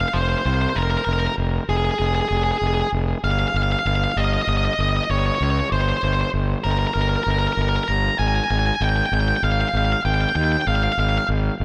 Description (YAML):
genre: post-rock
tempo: 97 BPM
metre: 4/4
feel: straight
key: F minor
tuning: A4 = 440 Hz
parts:
  - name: octave-fuzz lead guitar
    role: melody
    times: 0.0-11.3 s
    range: Ab4 to Bb5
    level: -24 LUFS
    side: equal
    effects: distortion, diffuse ambient delay
  - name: fuzz fingered electric bass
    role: bass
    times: 0.0-11.6 s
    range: F1 to Eb2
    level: -23 LUFS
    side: equal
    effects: overdrive
room: light reverb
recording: none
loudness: -21 LUFS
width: mono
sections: 0.0-11.6 A section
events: none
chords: 0.0 Fm; 3.2 Gm; 8.2 Fm/Ab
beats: 0.14 | 0.76 1.38 2.00 2.62 | 3.24 3.86 4.48 5.09 | 5.71 6.33 6.95 7.57 | 8.19 8.81 9.43 10.05 | 10.66 11.28